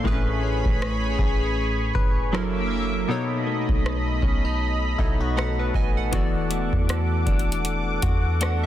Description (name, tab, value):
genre	contemporary R&B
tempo	79 BPM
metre	4/4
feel	swing 58% on 16ths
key	unclear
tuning	A4 = 439 Hz
part	warm analog keys	accompaniment	0.0-8.7 s	A2 to G#5	-28 LUFS	equal	chorus
part	lush unison pad	sustained chords	0.0-8.7 s	A#3 to D6	-29 LUFS	right 2 dB	chorus
part	direct-recorded clean electric guitar	arpeggios	0.0-8.7 s	B2 to B4	-31 LUFS	left 7 dB	digital delay
part	soft 808-style bass	bass	0.1-8.7 s	E1 to E2	-26 LUFS	equal	none
part	booming analog drum machine	drums	0.1-8.6 s	hi-hat, kick drum, rim click	-24 LUFS	equal	none
room	little or no reverb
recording	dense, heavily limited modern master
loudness	-21 LUFS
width	side -12 dB against mid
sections	0.0-8.7 A section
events	synth keys fill 4.6-6.1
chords	0.1 Amaj9; 2.3 F#7alt; 3.1 B7; 6.1 E9sus4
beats	| 0.05 0.81 1.57 2.33 | 3.09 3.85 4.61 5.37 | 6.13 6.89 7.65 8.41